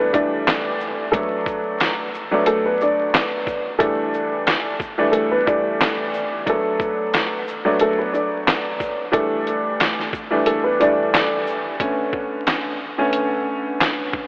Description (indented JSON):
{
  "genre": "hip hop, boom-bap hip-hop",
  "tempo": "90 BPM",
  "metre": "4/4",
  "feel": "swing 56% on 16ths",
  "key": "B minor",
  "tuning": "A4 = 440 Hz",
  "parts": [
    { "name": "dark upright piano", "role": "melody", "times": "0.0-11.3 s", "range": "A3 to D5", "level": "-22 LUFS", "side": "equal", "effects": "high-pass filter, low-pass filter, diffuse ambient delay" },
    { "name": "warm upright piano", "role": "accompaniment", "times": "0.0-14.3 s", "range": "D3 to D4", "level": "-21 LUFS", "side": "equal", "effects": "cassette tape, high-pass filter, low-pass filter" },
    { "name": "boom bap sampler-style drum kit", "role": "drums", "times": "0.1-14.3 s", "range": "handclaps, hi-hat, kick drum, shaker, snare drum", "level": "-22 LUFS", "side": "equal", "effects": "none" }
  ],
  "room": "wet huge ambient reverb, RT60 4.3 s",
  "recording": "dreamy mix soaked in reverb, vinyl crackle, telephone sound",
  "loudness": "-18 LUFS",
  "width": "side -28 dB against mid",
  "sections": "0.0-11.8 A section; 11.8-14.3 B section",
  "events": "kick muted 10.5-11.8",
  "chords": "0.0 A7sus4; 1.1 Bm7; 3.8 A7sus4; 6.5 Bm7; 9.1 A7sus4; 11.8 Bm9"
}